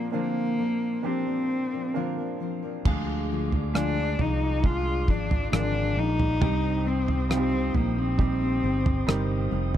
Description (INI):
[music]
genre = pop ballad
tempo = 68 BPM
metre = 4/4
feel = straight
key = unclear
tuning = A4 = 440 Hz
[part]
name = dark cello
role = melody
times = 0.0-9.5 s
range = Bb3 to F4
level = -28 LUFS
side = left 2 dB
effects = none
[part]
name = bright upright piano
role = accompaniment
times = 0.0-9.8 s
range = G2 to D5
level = -33 LUFS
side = right 11 dB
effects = none
[part]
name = fingerpicked steel-string acoustic guitar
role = arpeggios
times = 0.0-9.8 s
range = Bb2 to Bb4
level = -34 LUFS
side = left 16 dB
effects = none
[part]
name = percussive tonewheel organ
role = sustained chords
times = 2.9-9.8 s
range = Ab4 to Eb6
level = -38 LUFS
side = right 1 dB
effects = fast rotary speaker
[part]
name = fingered electric bass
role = bass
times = 2.9-9.8 s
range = F1 to D2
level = -28 LUFS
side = equal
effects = none
[part]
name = damped 70s drum kit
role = drums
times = 2.9-9.8 s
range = crash cymbal, kick drum, rim click, toms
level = -26 LUFS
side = right 1 dB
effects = none
[sound]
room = little or no reverb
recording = dry, close 1970s-style studio recording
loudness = -23 LUFS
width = side -11 dB against mid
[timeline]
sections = 0.0-2.9 A section; 2.9-9.8 B section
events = none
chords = 0.0 Bbadd9; 2.9 Ddim; 6.4 Cm